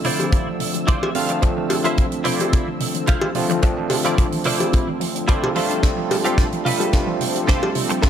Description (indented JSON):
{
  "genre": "nu-disco, nu disco",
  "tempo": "109 BPM",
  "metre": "4/4",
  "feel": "swing 53% on 16ths",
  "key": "D minor",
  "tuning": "A4 = 439 Hz",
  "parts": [
    { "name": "overdriven tine electric piano", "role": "accompaniment", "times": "0.0-8.1 s", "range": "F3 to E5", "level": "-24 LUFS", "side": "equal", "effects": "auto-pan, low-pass filter, tape echo" },
    { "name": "lush unison pad", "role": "sustained chords", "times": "0.0-8.1 s", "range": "D3 to E6", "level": "-28 LUFS", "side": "right 1 dB", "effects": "chorus, phaser, sidechain pumping" },
    { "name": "wide unison pluck", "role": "arpeggios", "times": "0.0-8.1 s", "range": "C3 to D4", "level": "-30 LUFS", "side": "left 2 dB", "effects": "phaser, sidechain pumping, tape echo" },
    { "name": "direct-recorded clean electric guitar", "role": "riff", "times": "0.0-8.1 s", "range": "E4 to F5", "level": "-25 LUFS", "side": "right 2 dB", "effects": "ensemble chorus, low-pass filter, tape echo" },
    { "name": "tight funk drum kit", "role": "drums", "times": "0.0-8.1 s", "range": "hi-hat, snare drum", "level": "-27 LUFS", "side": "right 5 dB", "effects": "none" },
    { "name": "cowbell", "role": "percussion", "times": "0.2-7.7 s", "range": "none", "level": "-25 LUFS", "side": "equal", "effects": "none" },
    { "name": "kick drum", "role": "drums", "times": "0.3-8.1 s", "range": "none", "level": "-18 LUFS", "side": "equal", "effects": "none" }
  ],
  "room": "light reverb, small room ambience",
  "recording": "none",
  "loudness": "-17 LUFS",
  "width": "side -9 dB against mid",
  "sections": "0.0-8.1 A section",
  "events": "build-up 0.0-8.1; filter sweep on synth arpeggio sound 0.0-8.1; clean electric guitar fill 0.6-1.4, 5.0-5.8; drum fill 5.8-8.1",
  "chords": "0.0 Dm9; 5.6 G9sus4",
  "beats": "0.33 0.88 | 1.43 1.98 2.53 3.08 | 3.63 4.18 4.73 5.28 | 5.83 6.38 6.93 7.48 | 8.03"
}